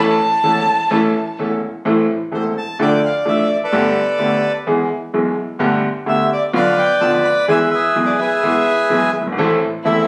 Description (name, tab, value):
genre	tango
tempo	128 BPM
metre	4/4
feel	rubato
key	A minor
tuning	A4 = 440 Hz
part	dark violin	second line	0.0-1.4, 9.8-10.1 s	E4 to A5	-20 LUFS	equal	none
part	bright concert grand piano	accompaniment	0.0-10.1 s	E1 to A4	-20 LUFS	equal	none
part	dark chamber string section	stabs	0.0-1.6, 9.4-10.0 s	C4 to A4	-32 LUFS	equal	none
part	bandoneon	melody	2.3-10.1 s	G#4 to B5	-18 LUFS	equal	none
room	moderate club reverb, RT60 0.6 s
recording	recorded on a phone in the room, studio reverb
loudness	-17 LUFS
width	mono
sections	0.0-1.8 A section; 1.8-10.1 B section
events	violin solo 0.0-1.8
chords	0.0 A; 1.8 Am; 2.8 Dm; 3.7 Gadd9; 4.7 E; 5.6 Gadd9; 6.5 Bdim; 7.5 E; 9.4 Am